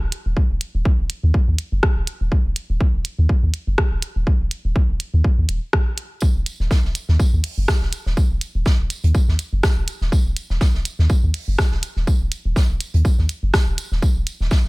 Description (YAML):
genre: minimal techno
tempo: 123 BPM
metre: 4/4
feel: swing 56% on 16ths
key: Eb minor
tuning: A4 = 441 Hz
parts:
  - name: punchy sub bass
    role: bass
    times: 0.0-14.7 s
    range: Eb1 to Eb2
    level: -19 LUFS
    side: equal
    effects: sidechain pumping
  - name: minimal click drum kit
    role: drums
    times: 0.1-14.4 s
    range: hi-hat, rim click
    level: -24 LUFS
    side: equal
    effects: studio reverb
  - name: electronic kick drum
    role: drums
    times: 0.4-14.6 s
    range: none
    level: -17 LUFS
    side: equal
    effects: studio reverb
  - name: unplugged drum kit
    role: drums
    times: 6.2-14.7 s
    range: hi-hat, snare drum, tambourine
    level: -33 LUFS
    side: right 2 dB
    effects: sidechain pumping on hats, high-pass filter on hats, studio reverb, high-pass filter on snare, sidechain pumping on perc, high-pass filter on perc, high-pass filter on room
room: little or no reverb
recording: none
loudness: -17 LUFS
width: side -25 dB against mid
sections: 0.0-14.7 A section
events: none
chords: none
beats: | 0.37 0.85 1.34 1.83 | 2.32 2.81 3.29 3.78 | 4.27 4.76 5.24 5.73 | 6.22 6.71 7.20 7.68 | 8.17 8.66 9.15 9.63 | 10.12 10.61 11.10 11.59 | 12.07 12.56 13.05 13.54 | 14.02 14.51